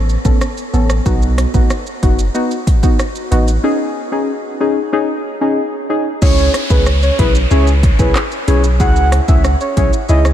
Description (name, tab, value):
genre	dancehall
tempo	93 BPM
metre	4/4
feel	straight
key	C# minor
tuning	A4 = 440 Hz
part	punchy sub bass	bass	0.0-10.3 s	F#1 to C#2	-14 LUFS	equal	none
part	afro-pop drum kit	drums	0.1-10.3 s	crash cymbal, handclaps, hi-hat, kick drum, rim click, shaker	-16 LUFS	equal	none
part	deep mellow chord stab	accompaniment	0.2-10.3 s	B3 to A4	-18 LUFS	left 2 dB	chorus
part	soft octave-layered synth lead	melody	6.2-10.2 s	B4 to F#5	-18 LUFS	right 2 dB	chorus, diffuse ambient delay
part	downlifter	sound effects	6.2-10.3 s	none	-25 LUFS	equal	none
room	light reverb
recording	none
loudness	-12 LUFS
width	side -11 dB against mid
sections	0.0-6.2 A section; 6.2-10.3 B section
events	break 3.6-6.2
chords	0.0 Aadd9; 1.1 B; 3.6 G#sus4; 6.2 C#m